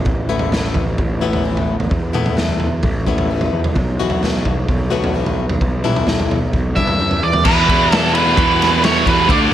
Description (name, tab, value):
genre	quiet-loud alternative rock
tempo	130 BPM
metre	4/4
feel	straight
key	unclear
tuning	A4 = 442 Hz
part	fuzz picked electric bass	bass	0.0-9.5 s	A1 to G2	-20 LUFS	equal	overdrive
part	raw garage drum kit	drums	0.1-9.4 s	crash cymbal, kick drum, ride cymbal, snare drum, toms	-18 LUFS	right 1 dB	none
part	picked plugged-in swing-style acoustic guitar	arpeggios	0.3-7.3 s	E3 to F#4	-23 LUFS	left 6 dB	none
part	octave-fuzz lead guitar	melody	6.8-9.4 s	B4 to E5	-16 LUFS	right 3 dB	distortion
part	high-gain distorted guitar	riff	7.4-9.5 s	E2 to D4	-16 LUFS	equal	distortion
room	light reverb, small room ambience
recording	none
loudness	-14 LUFS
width	side -11 dB against mid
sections	0.0-7.5 A section; 7.5-9.5 B section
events	none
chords	0.1 Asus2; 3.8 B7sus4; 5.6 G6/B; 7.5 E5